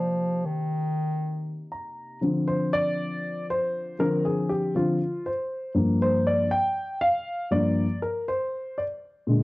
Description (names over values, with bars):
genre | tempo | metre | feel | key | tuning
progressive instrumental, progressive | 238 BPM (eighths) | 7/8 | straight | unclear | A4 = 439 Hz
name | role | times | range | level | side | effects
mellow bass clarinet | melody | 0.0-1.7 s | Eb3 to F3 | -26 LUFS | equal | cassette tape
dark baby grand piano | accompaniment | 0.0-9.4 s | G2 to Bb5 | -24 LUFS | left 1 dB | cassette tape
room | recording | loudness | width
light reverb, small room ambience | home recording on cassette | -24 LUFS | side -20 dB against mid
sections
0.0-2.2 A section; 2.2-9.4 B section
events
grand piano fill 1.5-2.2; grand piano solo 2.2-9.4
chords
0.0 Cm7; 2.2 Dm7; 5.7 Gm7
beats
0.20 | 0.46 0.71 0.96 1.21 1.46 1.72 1.97 | 2.22 2.47 2.72 2.98 3.23 3.48 3.73 | 3.98 4.24 4.49 4.74 4.99 5.24 5.50 | 5.75 6.00 6.25 6.50 6.75 7.01 7.26 | 7.51 7.76 8.02 8.27 8.52 8.77 9.02 | 9.28